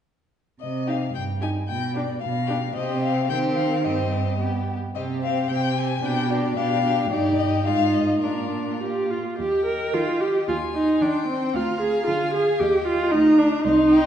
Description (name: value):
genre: quick classical-period movement for string quartet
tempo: 111 BPM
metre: 2/4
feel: rubato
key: C minor, Eb major from 7.1 s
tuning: A4 = 440 Hz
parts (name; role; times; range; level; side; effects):
- warm violin; melody; 0.6-14.1 s; Bb4 to C6; -29 LUFS; left 9 dB; none
- warm cello; bass; 0.6-14.1 s; C2 to Eb3; -27 LUFS; right 2 dB; none
- rich violin; second line; 0.9-14.1 s; F4 to Ab5; -32 LUFS; left 4 dB; none
- warm viola; accompaniment; 0.9-14.1 s; B3 to Bb4; -22 LUFS; right 1 dB; none
room: wet recital hall reverb, RT60 1.5 s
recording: heard from further back in the room, nothing above 10.7 kHz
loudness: -20 LUFS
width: side -9 dB against mid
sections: 0.6-9.4 A section; 9.4-14.1 B section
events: none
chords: 0.6 Cm; 1.7 G7/B; 2.8 Cm; 3.3 Cm/Eb; 3.8 Cm/G; 4.4 G; 5.0 C5; 6.0 G7/B; 7.1 Eb/G; 7.7 Fm7/Ab; 8.2 Bb; 9.4 Eb; 10.5 Fm13/Eb (rootless); 11.5 Bb7/D; 12.6 Eb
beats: | 0.61 1.15 | 1.69 2.23 | 2.76 3.30 | 3.84 4.40 | 4.96 5.51 | 6.04 6.57 | 7.11 7.66 | 8.24 8.82 | 9.39 9.94 | 10.48 11.02 | 11.55 12.08 | 12.61 13.13 | 13.66